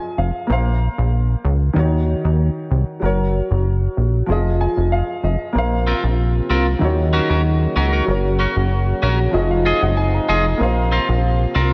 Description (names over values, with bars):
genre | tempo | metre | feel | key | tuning
dancehall | 95 BPM | 4/4 | straight | unclear | A4 = 445 Hz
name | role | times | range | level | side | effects
warm baby grand piano | accompaniment | 0.0-11.7 s | Eb3 to Bb5 | -25 LUFS | equal | subtle chorus
plucky analog bass | bass | 0.2-11.7 s | F1 to Eb2 | -20 LUFS | equal | none
mellow French horn section | sustained chords | 5.5-11.7 s | C3 to Gb4 | -27 LUFS | equal | none
clean electric guitar | arpeggios | 5.9-11.7 s | C4 to Eb5 | -24 LUFS | equal | lush chorus
room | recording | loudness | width
moderate church reverb, RT60 3.5 s | dreamy mix soaked in reverb | -18 LUFS | mono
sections
0.0-5.5 A section; 5.5-11.7 B section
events
grand piano fill 0.0-0.5, 4.3-5.5, 8.7-10.6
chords
0.5 Bbsus2; 1.8 Ebm7; 3.0 Gb; 4.3 Fm7; 5.5 Bbsus2; 6.8 Ebm7; 8.1 Gb; 9.3 Fm7; 10.6 Bbsus2